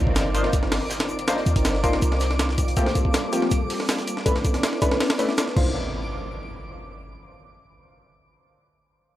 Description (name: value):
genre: drum and bass, jungle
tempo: 161 BPM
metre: 4/4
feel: straight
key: C minor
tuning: A4 = 440 Hz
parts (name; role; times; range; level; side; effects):
- soft string machine; sustained chords; 0.0-5.7 s; G3 to D5; -29 LUFS; equal; ensemble chorus
- warm 808-style bass; bass; 0.0-2.8, 5.6-5.7 s; G1 to Eb2; -24 LUFS; equal; none
- impact; sound effects; 0.0-1.3, 5.6-7.1 s; none; -34 LUFS; equal; none
- twinkling granular texture; texture; 0.1-5.8 s; D6; -36 LUFS; equal; built-in reverb
- breakbeat sampler-style drum kit; drums; 0.1-5.6 s; crash cymbal, hi-hat, kick drum, snare drum; -24 LUFS; equal; none
- vintage drum kit; drums; 0.2-5.5 s; hi-hat, shaker, snare drum; -35 LUFS; right 1 dB; high-pass filter on hats, high-pass filter on snare, high-pass filter on perc, high-pass filter on room
- band-passed chord stab; stabs; 0.3-5.7 s; F3 to C5; -28 LUFS; left 1 dB; chorus, phaser, dub echo
room: light reverb, small room ambience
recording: none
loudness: -20 LUFS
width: side -14 dB against mid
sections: 0.0-5.7 A section; 5.7-7.2 B section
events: impact 0.0-1.3; filter sweep on string machine 0.0-5.7; filter sweep on synth stab 0.0-5.7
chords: 0.0 Cm11; 2.8 Gm11; 4.3 Bm11; 5.6 Cm11; 5.7 N.C.